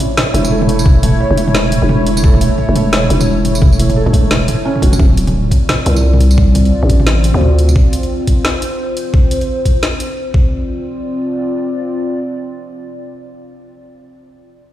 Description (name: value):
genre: half-time drum and bass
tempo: 174 BPM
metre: 4/4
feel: swing 59% on 16ths, half-time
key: unclear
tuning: A4 = 440 Hz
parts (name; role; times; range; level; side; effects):
- dark analog pad; sustained chords; 0.0-14.0 s; A3 to D5; -20 LUFS; left 1 dB; chorus, phaser, sidechain pumping
- felt-muted upright piano; arpeggios; 0.0-5.0 s; A3 to C#5; -20 LUFS; right 3 dB; ping-pong delay
- drum and bass drum kit; drums; 0.0-10.1 s; hi-hat, snare drum, tambourine, toms; -18 LUFS; equal; overdrive, studio reverb
- growling 808-style bass; bass; 0.3-7.7 s; D1 to D2; -12 LUFS; equal; none
- electronic kick drum; drums; 0.9-10.4 s; none; -11 LUFS; equal; overdrive, studio reverb
room: little or no reverb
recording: played on a big sound system in a bare room, stone room reverb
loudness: -11 LUFS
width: side -13 dB against mid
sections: 0.0-5.0 A section; 5.0-10.5 B section; 10.5-13.3 C section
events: drop 0.0-5.0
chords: 0.0 A; 5.0 Dm7